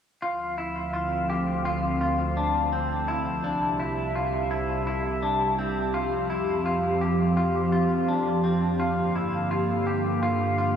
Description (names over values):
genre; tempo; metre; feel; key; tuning
dream pop; 84 BPM; 4/4; straight; D minor; A4 = 440 Hz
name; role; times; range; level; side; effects
warbly tape-like pad; sustained chords; 0.5-10.8 s; C2 to E5; -26 LUFS; equal; chorus, built-in reverb
clean electric guitar; arpeggios; 0.2-10.8 s; C4 to G4; -27 LUFS; left 1 dB; lush chorus, tape echo
room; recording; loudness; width
wet huge ambient reverb, RT60 7.8 s; dreamy mix soaked in reverb; -23 LUFS; side -8 dB against mid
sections
0.2-10.8 A section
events
none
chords
0.2 Dm7; 3.1 C; 5.9 Fsus2; 8.8 Gm